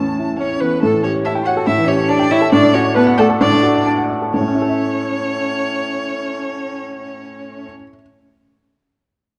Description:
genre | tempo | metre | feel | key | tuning
quick classical-period movement for piano trio | 125-143 BPM | 4/4 | straight | A major | A4 = 440 Hz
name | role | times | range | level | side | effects
rich violin | melody | 0.0-7.7 s | A4 to A5 | -22 LUFS | equal | none
rich cello | second line | 0.0-7.7 s | A3 to F#4 | -22 LUFS | equal | none
warm baby grand piano | accompaniment | 0.0-8.0 s | A2 to A5 | -20 LUFS | equal | none
room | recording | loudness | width
moderate recital hall reverb, RT60 1.6 s | worn, warbling old tape, cassette tape, warbly pitch drift | -16 LUFS | mono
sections
0.8-4.3 A section; 4.3-8.1 B section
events
slowing down 0.0-4.3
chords
0.0 A; 0.8 A7; 2.5 D/A; 4.3 A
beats
0.40 | 0.83 1.25 1.67 2.10 | 2.52 2.96 3.40 3.87 | 4.34 4.81 5.28 5.75 | 6.22 6.69 7.16 7.63

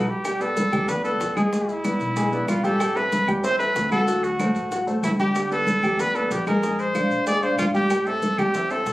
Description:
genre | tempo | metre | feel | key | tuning
latin, salsa | 188 BPM | 4/4 | straight | unclear | A4 = 437 Hz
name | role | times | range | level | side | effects
warm trumpet | melody | 0.0-8.9 s | D#4 to D5 | -24 LUFS | equal | none
warm grand piano | accompaniment | 0.0-8.9 s | F#3 to G#5 | -25 LUFS | equal | none
upright bass | bass | 0.0-8.9 s | G1 to A#2 | -33 LUFS | equal | none
bongos | percussion | 0.2-8.9 s | none | -37 LUFS | left 3 dB | none
claves | percussion | 0.2-8.5 s | none | -36 LUFS | left 1 dB | none
maracas | percussion | 0.2-8.9 s | none | -41 LUFS | right 2 dB | none
congas | percussion | 0.3-8.9 s | none | -27 LUFS | equal | none
room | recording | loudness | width
moderate studio reverb, RT60 0.7 s | recorded on a phone in the room, club ambience, compression | -20 LUFS | side -17 dB against mid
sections
0.3-8.9 A section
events
drum fill 0.0; band accent 0.0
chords
0.3 Gadd9; 1.5 E7; 2.8 Am7; 4.1 D7; 5.4 G; 6.6 A#13; 7.9 Am7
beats
| 0.25 0.57 0.89 1.21 | 1.53 1.84 2.16 2.48 | 2.80 3.12 3.44 3.76 | 4.08 4.40 4.72 5.04 | 5.36 5.67 5.99 6.31 | 6.63 6.95 7.27 7.59 | 7.91 8.23 8.55 8.87

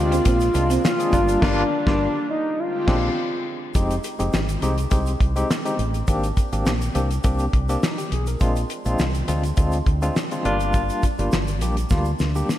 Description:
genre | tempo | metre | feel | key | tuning
early-eighties boogie funk | 103 BPM | 4/4 | straight | F dorian | A4 = 439 Hz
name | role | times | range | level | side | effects
expressive synth lead | melody | 0.0-3.5 s | D4 to F4 | -23 LUFS | left 1 dB | chorus
barky tine electric piano | accompaniment | 0.0-12.5 s | G3 to Bb4 | -26 LUFS | left 1 dB | medium tremolo, slapback echo
lush unison pad | sustained chords | 0.0-3.7 s | C3 to G4 | -33 LUFS | right 2 dB | chorus
fingered electric bass | bass | 0.0-12.4 s | F1 to D2 | -23 LUFS | equal | none
semi-hollow electric guitar | riff | 0.1-1.2 s | C4 to D4 | -29 LUFS | right 7 dB | analog chorus, slapback echo
damped 70s drum kit | drums | 0.1-12.6 s | crash cymbal, handclaps, hi-hat, kick drum, snare drum | -23 LUFS | equal | none
tube shaker | percussion | 0.1-12.6 s | none | -41 LUFS | right 7 dB | none
room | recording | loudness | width
moderate concert hall reverb, RT60 2.1 s | big arena sound | -19 LUFS | side -13 dB against mid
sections
0.0-3.8 A section; 3.8-12.6 B section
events
band accent 1.4-3.8; drum fill 11.9-12.6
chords
0.0 Bb9; 1.1 Gm7; 2.6 Bb13; 3.8 Fm9; 6.1 Abmaj9#11; 8.4 Bb9; 10.4 Gm7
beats
0.26 0.84 | 1.42 2.00 2.58 3.17 | 3.75 4.33 4.92 5.50 | 6.08 6.66 7.25 7.83 | 8.41 8.99 9.57 10.16 | 10.74 11.32 11.90 12.49

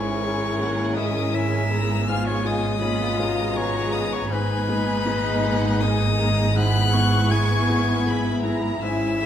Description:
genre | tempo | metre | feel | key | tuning
cinematic, emotional film score for orchestra | 80 BPM | 3/4 | rubato | unclear | A4 = 440 Hz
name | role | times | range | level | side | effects
rich violin | melody | 0.0-9.3 s | B5 to G#6 | -29 LUFS | left 6 dB | none
warm studio violin section | melody | 0.0-9.3 s | D#5 to C#6 | -32 LUFS | left 3 dB | none
clear clarinet | second line | 0.0-9.3 s | B4 to G#5 | -30 LUFS | left 1 dB | none
rich studio violin section | second line | 0.0-9.3 s | D#4 to B4 | -32 LUFS | equal | none
felt-muted upright piano | accompaniment | 0.0-9.3 s | G#2 to G#4 | -29 LUFS | left 3 dB | none
rich studio viola section | accompaniment | 0.0-9.3 s | G#3 to C#4 | -31 LUFS | right 2 dB | none
clear French horn section | sustained chords | 0.0-9.3 s | B2 to E#4 | -29 LUFS | left 2 dB | none
rich studio cello section | bass | 0.0-9.3 s | G#2 | -26 LUFS | right 2 dB | none
warm studio double bass section | bass | 0.0-9.3 s | G#1 | -27 LUFS | right 2 dB | none
room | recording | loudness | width
moderate recital hall reverb, RT60 1.3 s | none | -20 LUFS | side -10 dB against mid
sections
0.0-9.3 A section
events
none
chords
0.0 C#m/G#; 2.1 C#7/G#; 4.3 G#madd9; 6.6 E/G#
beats
0.59 1.34 | 2.08 2.82 3.56 | 4.30 5.05 5.81 | 6.56 7.31 8.06 | 8.81

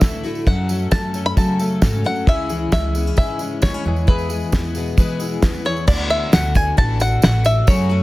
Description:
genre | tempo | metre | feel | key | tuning
indie folk with a building arrangement | 133 BPM | 4/4 | straight | unclear | A4 = 441 Hz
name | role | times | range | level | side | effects
bluegrass banjo | melody | 0.0-8.0 s | B4 to B5 | -22 LUFS | equal | none
fingerpicked steel-string acoustic guitar | accompaniment | 0.0-7.5 s | E2 to G#4 | -27 LUFS | left 2 dB | none
picked twelve-string acoustic guitar | accompaniment | 0.0-8.0 s | F#2 to A4 | -28 LUFS | left 4 dB | none
upright bass | bass | 0.0-8.0 s | A1 to F#3 | -21 LUFS | equal | none
cloth-damped thuddy drum kit | drums | 0.0-7.8 s | crash cymbal, kick drum, snare drum | -16 LUFS | equal | none
tambourine | percussion | 0.0-7.8 s | none | -36 LUFS | right 7 dB | none
room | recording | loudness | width
small room reverb | dense, heavily limited modern master | -16 LUFS | side -18 dB against mid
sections
0.0-5.9 A section; 5.9-8.0 B section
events
none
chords
0.5 F#m; 2.3 C#m; 3.9 E; 5.9 Dadd9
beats
0.02 | 0.47 0.92 1.37 1.82 | 2.27 2.72 3.17 3.63 | 4.08 4.53 4.98 5.43 | 5.88 6.33 6.78 7.23 | 7.68

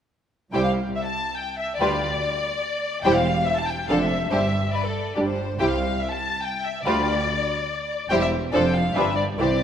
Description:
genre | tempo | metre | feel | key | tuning
quick classical-period movement for string orchestra | 143 BPM | 3/4 | straight | C major | A4 = 441 Hz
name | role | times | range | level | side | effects
warm symphonic violin section | melody | 0.5-9.6 s | D5 to A5 | -26 LUFS | left 3 dB | none
warm symphonic violin section | second line | 0.5-9.6 s | G4 to C5 | -27 LUFS | left 2 dB | none
dark symphonic viola section | accompaniment | 0.5-9.6 s | D3 to F4 | -26 LUFS | right 2 dB | none
rich symphonic double bass section | bass | 0.5-9.6 s | E1 to D2 | -30 LUFS | right 3 dB | none
warm symphonic cello section | bass | 0.5-9.6 s | C2 to C3 | -29 LUFS | right 2 dB | none
room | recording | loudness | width
moderate scoring stage reverb, RT60 1.9 s | none | -21 LUFS | side -8 dB against mid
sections
0.5-9.6 A section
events
none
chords
0.5 C; 1.8 G7(no3)/D; 3.0 C/E; 3.9 Dm7/F; 4.3 Gsus4; 5.6 C; 6.9 G7(no3)/D; 8.1 C/E; 8.5 Dm7/F; 8.9 G7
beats
| 0.53 0.95 1.37 | 1.79 2.21 2.62 | 3.03 3.45 3.88 | 4.30 4.73 5.16 | 5.59 6.02 6.44 | 6.86 7.28 7.70 | 8.11 8.53 8.95 | 9.38

